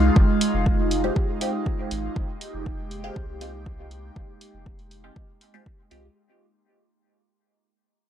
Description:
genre	dub techno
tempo	120 BPM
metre	4/4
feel	straight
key	F minor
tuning	A4 = 442 Hz
part	airy breathy pad	sustained chords	0.0-6.1 s	Ab3 to G4	-26 LUFS	right 1 dB	chorus, phaser, sidechain pumping
part	soft dub sub bass	bass	0.0-6.1 s	F1 to C2	-28 LUFS	equal	sidechain pumping
part	drifting glass-harmonics texture	texture	0.0-6.2 s	Ab3 to Ab4	-36 LUFS	equal	chorus, built-in reverb, sidechain pumping
part	electronic kick drum	drums	0.2-5.8 s	none	-22 LUFS	equal	overdrive
part	electronic hi-hat	drums	0.4-6.0 s	none	-33 LUFS	right 1 dB	none
part	filtered dub chord stab	stabs	1.0-6.1 s	Ab3 to G4	-33 LUFS	left 1 dB	phaser, sidechain pumping, dub echo
room	light reverb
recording	dry, gritty hardware recording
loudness	-22 LUFS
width	side -10 dB against mid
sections	0.0-6.2 A section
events	fade-out 0.0-6.2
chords	0.0 Fmadd9

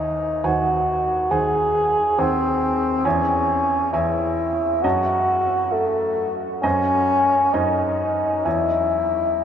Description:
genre	classical, romantic duo for bassoon and grand piano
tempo	59-71 BPM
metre	4/4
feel	rubato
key	unclear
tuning	A4 = 442 Hz
part	mellow bassoon	melody	0.0-9.4 s	A3 to G#4	-19 LUFS	equal	none
part	clear baby grand piano	accompaniment	0.0-9.4 s	D#2 to A5	-26 LUFS	right 2 dB	none
room	wet huge ambient reverb, RT60 7.6 s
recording	in a vast, echoing space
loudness	-18 LUFS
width	side -8 dB against mid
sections	0.0-9.4 A section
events	none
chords	0.0 G#7/D#; 3.0 C#m/E; 4.8 D#m7b5/F#; 6.6 G#7/F#; 8.5 C#m/E

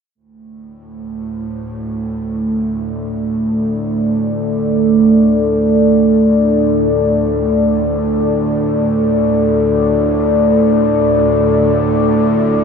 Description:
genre	dark ambient drone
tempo	free time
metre	none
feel	none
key	unclear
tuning	A4 = 441 Hz
part	deep dark ambient pad	sustained chords	1.1-12.6 s	A3 to D5	-13 LUFS	equal	chorus, built-in reverb
part	bowed-like drone	drone	0.8-12.6 s	D2 to A2	-20 LUFS	equal	built-in reverb
room	wet cathedral reverb, RT60 6.0 s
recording	none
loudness	-12 LUFS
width	side -6 dB against mid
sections	0.2-12.6 A section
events	fade-in on synth drone 0.2-12.6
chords	0.2 D5

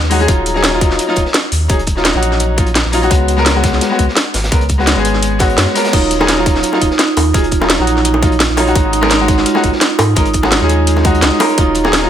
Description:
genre	liquid drum and bass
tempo	170 BPM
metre	4/4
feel	swing 54% on 16ths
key	Eb minor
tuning	A4 = 440 Hz
part	saturated sub bass	bass	0.0-12.1 s	Eb1 to Ab2	-17 LUFS	equal	none
part	crunchy breakbeat drum kit	drums	0.0-12.1 s	hi-hat, snare drum	-23 LUFS	equal	high-pass filter on hats, high-pass filter on snare, high-pass filter on room
part	bright grand piano	accompaniment	0.1-12.1 s	Gb3 to Bb4	-15 LUFS	left 1 dB	tape echo
part	drum and bass drum kit	drums	0.1-12.0 s	crash cymbal, hi-hat, snare drum	-16 LUFS	equal	none
part	electronic kick drum	drums	0.3-11.7 s	none	-15 LUFS	equal	none
part	vibraphone with hard mallets	arpeggios	5.9-12.1 s	Eb4 to F4	-17 LUFS	right 5 dB	tape echo
part	bongos	percussion	6.2-11.9 s	none	-20 LUFS	equal	none
room	light reverb, small room ambience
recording	none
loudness	-10 LUFS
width	side -10 dB against mid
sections	0.0-12.1 A section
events	none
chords	0.3 Ebm9; 3.1 Db7sus4; 5.9 Ebm9; 8.8 Ab7sus4; 11.6 Ebm9

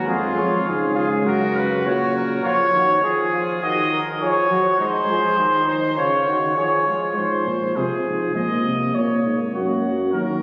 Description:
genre	classical, imitative canzona for brass ensemble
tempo	101 BPM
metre	4/4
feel	straight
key	unclear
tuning	A4 = 442 Hz
part	mellow trumpet	melody	0.0-10.4 s	F#4 to D#5	-23 LUFS	equal	none
part	warm flugelhorn	second line	0.0-7.2 s	D#4 to A#4	-28 LUFS	equal	none
part	mellow euphonium	accompaniment	0.0-10.4 s	C#3 to A#3	-28 LUFS	equal	none
part	dark bass trombone	bass	0.0-2.4, 7.2-10.4 s	D#2 to C3	-27 LUFS	equal	none
room	wet church reverb, RT60 2.9 s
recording	recorded on a phone in the room, studio reverb, compression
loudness	-20 LUFS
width	mono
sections	0.0-7.2 A section; 7.2-10.4 B section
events	none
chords	0.1 C#/E#; 1.3 F#; 2.4 C#; 3.6 D#m; 4.8 G#; 6.0 C#; 7.2 Fm/Ab; 8.4 A#m; 9.5 D#m/F#

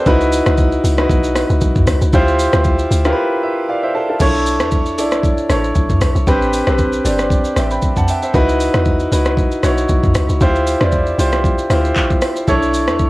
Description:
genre	amapiano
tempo	116 BPM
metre	4/4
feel	swing 55% on 16ths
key	unclear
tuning	A4 = 441 Hz
part	warm concert grand piano	accompaniment	0.0-13.1 s	C4 to B5	-16 LUFS	equal	cassette tape
part	deep log drum bass	bass	0.1-13.1 s	G1 to E2	-18 LUFS	equal	none
part	smooth R&B drum kit	drums	0.1-13.1 s	crash cymbal, handclaps, hi-hat, kick drum, rim click, shaker, toms	-17 LUFS	equal	cassette tape
room	little or no reverb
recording	home recording on cassette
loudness	-13 LUFS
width	side -19 dB against mid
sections	0.0-4.2 A section; 4.2-13.1 B section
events	drop 0.0-4.2; break 3.2-4.2; grand piano fill 3.2-4.2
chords	0.1 C#m11; 2.1 Dm11; 4.2 Bm11; 6.3 Am11; 8.3 C#m11; 10.4 Dm11; 12.5 Bm11

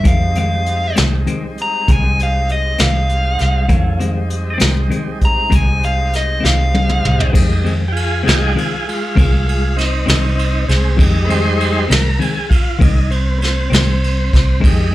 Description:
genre	slow blues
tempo	66 BPM (dotted quarters)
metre	12/8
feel	straight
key	F minor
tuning	A4 = 440 Hz
part	dark smooth lead guitar	melody	0.0-7.3 s	Eb5 to Bb5	-19 LUFS	left 1 dB	overdrive, slapback echo
part	clean electric guitar	accompaniment	0.0-14.8 s	F2 to C4	-21 LUFS	left 4 dB	tremolo, slapback echo
part	tonewheel organ	sustained chords	0.0-14.9 s	E3 to C5	-22 LUFS	equal	slow rotary speaker
part	vintage muted fingered electric bass	bass	0.0-14.9 s	C2 to F2	-16 LUFS	equal	none
part	vintage brush drum kit	drums	0.0-14.8 s	crash cymbal, hi-hat, kick drum, ride cymbal, snare drum, toms	-16 LUFS	equal	none
room	little or no reverb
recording	live gig heard through the venue's PA, club reverb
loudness	-13 LUFS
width	side -16 dB against mid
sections	0.0-7.3 A section; 7.3-14.9 B section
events	drum fill 6.4-7.3; tonewheel organ solo 7.3-14.9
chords	0.1 Fm7

